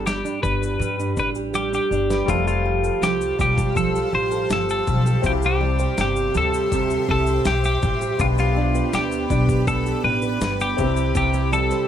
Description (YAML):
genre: acoustic pop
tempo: 81 BPM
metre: 4/4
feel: straight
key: C major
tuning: A4 = 441 Hz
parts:
  - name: twelve-string electric guitar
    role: melody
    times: 0.0-11.9 s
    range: F4 to C5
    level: -24 LUFS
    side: left 2 dB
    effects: plate reverb
  - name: clear concert grand piano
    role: accompaniment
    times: 0.0-11.9 s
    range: G3 to B4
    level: -31 LUFS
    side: left 10 dB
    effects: none
  - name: fingerpicked steel-string acoustic guitar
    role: accompaniment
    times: 0.0-11.9 s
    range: C3 to C5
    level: -24 LUFS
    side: right 4 dB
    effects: none
  - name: upright bass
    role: bass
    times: 0.0-11.7 s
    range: F1 to G2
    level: -24 LUFS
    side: left 1 dB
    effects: none
  - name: dusty soul sampler-style drum kit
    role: drums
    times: 0.1-11.9 s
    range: kick drum, shaker, snare drum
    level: -27 LUFS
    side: left 1 dB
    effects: overdrive
  - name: shimmering ambient pad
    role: sustained chords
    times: 3.3-11.9 s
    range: C4 to C6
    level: -32 LUFS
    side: left 2 dB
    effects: chorus, built-in reverb
room: moderate studio reverb, RT60 0.5 s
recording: none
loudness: -18 LUFS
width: side -10 dB against mid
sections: 0.0-2.3 A section; 2.3-11.9 B section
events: drum fill 1.5-2.3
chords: 0.0 G; 2.3 Fadd9; 5.2 C; 8.2 G/B; 10.8 C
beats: 0.06 0.80 1.54 | 2.28 3.02 3.76 4.50 | 5.24 5.98 6.72 7.46 | 8.20 8.94 9.68 10.41 | 11.15